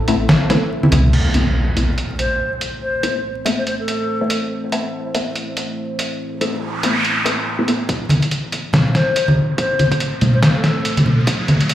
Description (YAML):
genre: deep dubstep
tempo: 142 BPM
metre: 4/4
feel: swing 58% on 16ths, half-time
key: A minor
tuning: A4 = 442 Hz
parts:
  - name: deep dark ambient pad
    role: sustained chords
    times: 0.0-11.7 s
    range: A3 to C5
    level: -27 LUFS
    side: equal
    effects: chorus, built-in reverb, vintage 12-bit sampler grit
  - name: dark detuned saw bass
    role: bass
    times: 0.0-1.1, 7.9-11.7 s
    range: A1 to E2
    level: -22 LUFS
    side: equal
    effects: none
  - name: filtered dub chord stab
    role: stabs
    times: 0.1-11.6 s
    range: A3 to E4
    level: -23 LUFS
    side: left 2 dB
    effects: phaser, lush chorus, dub echo
  - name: trip hop sampler-style drum kit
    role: drums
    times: 0.1-11.7 s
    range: crash cymbal, hi-hat, snare drum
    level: -21 LUFS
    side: equal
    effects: none
  - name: congas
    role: percussion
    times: 0.3-1.0, 8.1-11.6 s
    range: none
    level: -17 LUFS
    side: equal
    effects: none
  - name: impact, noise sweep and riser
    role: sound effects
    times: 1.1-2.8, 6.5-11.7 s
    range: none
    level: -22 LUFS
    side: equal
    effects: none
  - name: breathy bright low ney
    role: melody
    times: 2.2-4.4, 8.9-11.1 s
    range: A4 to C5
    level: -22 LUFS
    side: left 2 dB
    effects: low-pass filter, dub echo
  - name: electronic kick drum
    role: drums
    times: 7.9-11.4 s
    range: none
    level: -25 LUFS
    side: equal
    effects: high-pass filter on kick, high-pass filter on room
room: moderate spring reverb, RT60 1.5 s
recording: played on a big sound system in a bare room, large studio reverb, vinyl crackle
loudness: -15 LUFS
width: side -12 dB against mid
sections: 0.0-1.1 A section; 1.1-7.9 B section; 7.9-11.7 C section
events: drop 0.0-1.1; impact 1.1-2.8; filter sweep on ambient pad 1.1-7.9; noise sweep 6.5-7.9; build-up 7.9-11.7; riser 7.9-11.7; filter sweep on synth stab 7.9-11.7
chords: 0.0 Amadd9